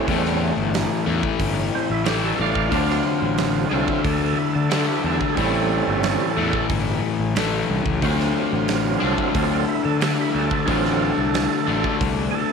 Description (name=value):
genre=blues rock power trio and southern rock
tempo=90 BPM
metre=4/4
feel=straight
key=unclear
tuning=A4 = 441 Hz
part: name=overdriven tonewheel organ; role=sustained chords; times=0.0-12.5 s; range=F#3 to F5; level=-25 LUFS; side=right 12 dB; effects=fast rotary speaker
part: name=overdriven semi-hollow guitar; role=riff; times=0.0-12.5 s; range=A2 to D4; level=-22 LUFS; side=left 10 dB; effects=none
part: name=fuzz fingered electric bass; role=bass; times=0.1-12.3 s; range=G1 to D3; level=-25 LUFS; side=right 1 dB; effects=overdrive
part: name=huge arena drum kit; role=drums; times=0.1-12.2 s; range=hi-hat, kick drum, snare drum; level=-27 LUFS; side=right 5 dB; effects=none
room=light reverb, small room reverb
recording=1960s-style stereo with parts hard left and right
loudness=-19 LUFS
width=side -6 dB against mid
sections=0.0-12.5 A section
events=tonewheel organ solo 0.0-12.5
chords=0.0 A7#9; 2.7 D7#9; 5.4 A7#9; 8.0 D7#9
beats=| 0.08 0.74 1.40 2.06 | 2.73 3.39 4.05 4.71 | 5.38 6.04 6.70 7.36 | 8.03 8.69 9.35 10.02 | 10.68 11.35 12.01